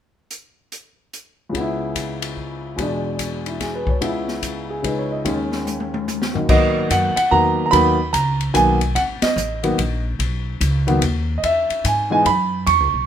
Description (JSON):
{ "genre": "jazz piano trio", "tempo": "146 BPM", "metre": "3/4", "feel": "swing 64% on 8ths", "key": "G# minor", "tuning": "A4 = 440 Hz", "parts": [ { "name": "open jazz drum kit", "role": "drums", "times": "0.3-12.8 s", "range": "crash cymbal, hi-hat, kick drum, ride cymbal, snare drum, toms", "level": "-25 LUFS", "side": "left 2 dB", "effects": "none" }, { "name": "warm grand piano", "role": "melody", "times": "1.5-13.1 s", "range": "C#2 to C#6", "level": "-19 LUFS", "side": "right 1 dB", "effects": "none" }, { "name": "upright bass", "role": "bass", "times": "6.5-13.1 s", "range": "G#1 to G#2", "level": "-22 LUFS", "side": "equal", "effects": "none" } ], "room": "light reverb", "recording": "minimal, uncompressed stereo recording", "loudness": "-17 LUFS", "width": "side -9 dB against mid", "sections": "0.3-1.5 A section; 1.5-6.5 B section; 6.5-13.1 C section", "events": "drum fill 5.7-6.5; band accent 9.2", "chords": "0.3 N.C.; 1.5 C#m7; 2.8 E7; 4.0 C#m7; 5.3 D#7sus4; 6.5 G#m7; 11.4 C#m7" }